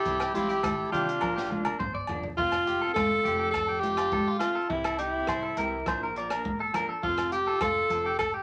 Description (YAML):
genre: highlife guitar band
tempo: 103 BPM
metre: 4/4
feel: straight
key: F major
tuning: A4 = 437 Hz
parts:
  - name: bright alto saxophone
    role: melody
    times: 0.0-8.3 s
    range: E4 to A4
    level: -30 LUFS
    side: equal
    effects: none
  - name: bright trumpet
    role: second line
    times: 0.0-1.8 s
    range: D4 to E4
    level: -37 LUFS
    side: equal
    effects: none
  - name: clean electric guitar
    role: arpeggios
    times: 0.0-8.4 s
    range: F4 to D5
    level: -35 LUFS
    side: equal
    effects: none
  - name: clean electric guitar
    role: accompaniment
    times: 0.1-8.1 s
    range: E3 to Bb4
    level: -42 LUFS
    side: equal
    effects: warbly pitch drift
  - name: upright bass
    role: bass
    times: 0.1-8.4 s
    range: F1 to C3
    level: -44 LUFS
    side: equal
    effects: none
  - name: crunchy breakbeat drum kit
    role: drums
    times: 0.1-8.3 s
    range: hi-hat, kick drum, rim click, snare drum, toms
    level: -42 LUFS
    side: equal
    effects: none
  - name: congas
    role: percussion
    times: 0.1-8.3 s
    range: none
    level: -38 LUFS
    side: equal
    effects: none
  - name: agogo bells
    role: percussion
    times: 0.2-8.3 s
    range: none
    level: -40 LUFS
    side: equal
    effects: none
room: wet studio reverb, RT60 0.6 s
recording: vinyl crackle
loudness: -28 LUFS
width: mono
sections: 0.0-2.4 A section; 2.4-8.4 B section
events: drum fill 1.2-2.4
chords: 0.1 C; 1.2 Bb; 2.4 F; 4.7 C; 5.9 Bb; 7.0 F